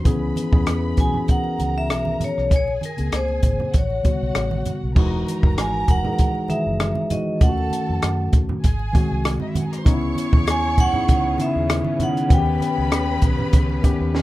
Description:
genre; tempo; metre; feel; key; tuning
lush 1970s-style soul; 98 BPM; 4/4; swing 54% on 16ths; unclear; A4 = 442 Hz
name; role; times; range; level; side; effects
warm symphonic violin section; second line; 0.0-14.2 s; D#4 to C#6; -33 LUFS; equal; none
mellow tine electric piano; accompaniment; 0.0-14.2 s; C#3 to G#4; -24 LUFS; left 2 dB; none
vintage muted fingered electric bass; bass; 0.1-14.2 s; E1 to F#2; -25 LUFS; equal; none
compact cocktail drum kit; drums; 0.1-14.2 s; crash cymbal, hi-hat, kick drum, rim click, snare drum; -18 LUFS; equal; none
congas; percussion; 0.1-14.0 s; none; -30 LUFS; right 3 dB; none
vibraphone with hard mallets; melody; 1.0-13.2 s; A#4 to G#5; -24 LUFS; equal; none
clear studio string section; sustained chords; 9.9-14.2 s; C#3 to B4; -33 LUFS; equal; none
room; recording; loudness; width
little or no reverb; rough home demo mix; -18 LUFS; side -16 dB against mid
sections
0.0-5.0 A section; 5.0-14.2 B section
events
none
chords
0.1 C#m7; 2.5 A#m9; 3.7 A13; 5.0 Emaj9; 7.4 D#m7b5; 8.6 G#7; 9.9 C#m9; 12.3 D#7b13

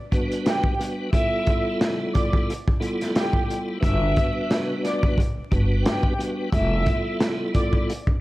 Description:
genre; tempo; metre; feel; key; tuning
hip hop, boom-bap hip-hop; 89 BPM; 4/4; swing 57% on 16ths; G major; A4 = 440 Hz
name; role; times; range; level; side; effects
tonewheel organ; accompaniment; 0.1-7.9 s; G3 to B4; -27 LUFS; equal; overdrive, chorus vibrato, slow rotary speaker, high-pass filter, low-pass filter
crunchy breakbeat drum kit; drums; 0.1-8.2 s; hi-hat, kick drum, snare drum; -23 LUFS; equal; none
warm studio violin section; melody; 0.5-7.7 s; G4 to E6; -28 LUFS; equal; high-pass filter, low-pass filter, tape echo
upright bass; bass; 3.8-8.1 s; F1 to G1; -24 LUFS; equal; none
room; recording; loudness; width
studio ambience; echo-heavy mix, vinyl crackle; -20 LUFS; side -18 dB against mid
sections
0.0-8.2 A section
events
break 0.0-3.8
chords
0.0 Gmaj7; 1.1 Fmaj9#11; 3.8 Gmaj7; 6.5 Fmaj9#11

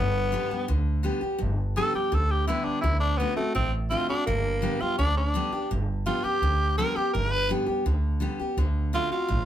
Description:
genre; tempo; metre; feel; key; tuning
rockabilly; 168 BPM; 4/4; straight; G major; A4 = 440 Hz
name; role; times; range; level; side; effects
growling tenor saxophone; melody; 0.0-9.4 s; A3 to B4; -26 LUFS; equal; none
picked steel-string acoustic guitar; accompaniment; 0.0-9.4 s; G2 to G4; -30 LUFS; left 2 dB; none
upright bass; bass; 0.0-9.4 s; G1 to D2; -26 LUFS; right 1 dB; none
room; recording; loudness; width
moderate small room reverb, RT60 0.6 s; band playing live in one room; -24 LUFS; side -11 dB against mid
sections
0.0-5.7 A section; 5.7-9.4 A section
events
tenor saxophone solo 0.0-9.4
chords
0.0 G; 2.8 D7; 4.3 G; 8.6 D7

